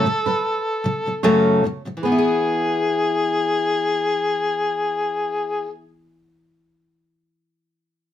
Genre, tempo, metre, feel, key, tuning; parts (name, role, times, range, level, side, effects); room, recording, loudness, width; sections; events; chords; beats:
pop; 76 BPM; 4/4; swing 55% on 16ths; E major; A4 = 440 Hz
overdriven harmonica; melody; 0.0-5.7 s; G#4 to A4; -20 LUFS; left 2 dB
fingerpicked steel-string acoustic guitar; accompaniment; 0.0-5.9 s; F#2 to A4; -21 LUFS; left 1 dB
nylon-string guitar; arpeggios; 0.3-4.4 s; B4 to C#5; -30 LUFS; right 6 dB
light reverb; -18 LUFS; side -10 dB against mid
0.0-2.0 A section; 2.0-5.2 B section
0.0 F#m; 2.0 E
0.44 1.23 | 2.02 2.82 3.61 4.40